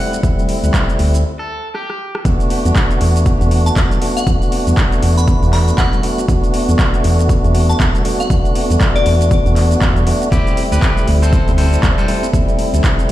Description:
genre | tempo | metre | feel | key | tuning
deep house | 119 BPM | 4/4 | swing 60% on 16ths | E minor | A4 = 440 Hz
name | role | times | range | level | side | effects
electric guitar at the edge of break-up | melody | 0.0-2.2, 10.3-12.3 s | E4 to F#5 | -26 LUFS | equal | tape echo
tonewheel organ | stabs | 0.0-13.1 s | G3 to F#4 | -20 LUFS | equal | overdrive, stopped rotary speaker, sidechain pumping, digital delay
deep house drum kit | drums | 0.1-13.1 s | handclaps, hi-hat, rim click, shaker | -24 LUFS | equal | overdrive, studio reverb
congas | percussion | 0.1-13.1 s | none | -28 LUFS | left 4 dB | none
organ-like FM bass | bass | 0.2-13.1 s | D2 to E2 | -14 LUFS | equal | sidechain pumping
electronic kick drum | drums | 0.2-13.0 s | none | -16 LUFS | equal | overdrive, studio reverb
dark analog pad | sustained chords | 4.0-13.1 s | B3 to E5 | -27 LUFS | equal | chorus, phaser, sidechain pumping
glassy synth bell | melody | 3.7-9.3 s | D5 to B5 | -23 LUFS | left 4 dB | chorus, digital delay
room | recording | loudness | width
digital ambience | played on a big sound system in a bare room, large studio reverb | -12 LUFS | side -14 dB against mid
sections
0.0-2.3 A section; 2.3-13.1 B section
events
break 1.2-2.3; drum fill 1.7-2.3; drop 2.3-13.1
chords
0.0 D9sus4; 2.3 E9sus4; 10.3 D9sus4

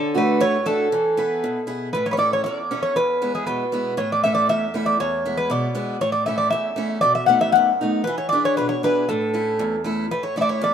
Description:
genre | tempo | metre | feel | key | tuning
greek folk | 118 BPM | 2/4 | straight | A major | A4 = 440 Hz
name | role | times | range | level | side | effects
Greek bouzouki | melody | 0.0-10.7 s | G#4 to F#5 | -20 LUFS | equal | none
picked steel-string acoustic guitar | accompaniment | 0.0-10.7 s | E2 to B4 | -24 LUFS | equal | none
room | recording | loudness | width
moderate plate reverb, RT60 2.6 s | minimal, uncompressed stereo recording | -19 LUFS | side -8 dB against mid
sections
0.0-1.9 A section; 1.9-10.1 B section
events
none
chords
0.0 D; 0.9 E; 1.9 A; 3.0 E; 4.0 A; 5.0 E; 6.0 A; 7.0 B7; 8.1 E7; 9.1 A

